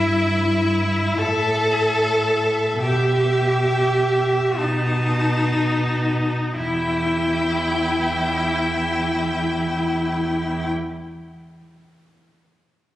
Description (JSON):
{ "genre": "classical, slow romantic movement for string quartet", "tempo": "28-38 BPM (dotted quarters)", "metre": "6/8", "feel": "rubato", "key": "E minor", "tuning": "A4 = 440 Hz", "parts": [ { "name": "clear violin", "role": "melody", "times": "0.0-10.7 s", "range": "E5 to A5", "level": "-28 LUFS", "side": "left 3 dB", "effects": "none" }, { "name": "clear violin", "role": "second line", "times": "0.0-10.7 s", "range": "D#4 to A4", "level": "-26 LUFS", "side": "left 2 dB", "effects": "none" }, { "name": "rich viola", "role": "accompaniment", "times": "0.0-10.7 s", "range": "D#4 to A4", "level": "-22 LUFS", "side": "right 1 dB", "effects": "none" }, { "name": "warm cello", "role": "bass", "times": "0.0-10.7 s", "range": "E2 to B2", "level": "-24 LUFS", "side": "right 1 dB", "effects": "none" } ], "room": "moderate scoring stage reverb, RT60 2.0 s", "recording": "recorded on a phone in the room, club reverb, compression", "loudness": "-18 LUFS", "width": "side -14 dB against mid", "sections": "0.0-6.6 A section; 6.6-10.4 B section", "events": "slowing down 0.0-6.6", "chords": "0.0 Em/G; 1.2 A5; 2.8 Em/B; 4.6 B7; 6.6 Em" }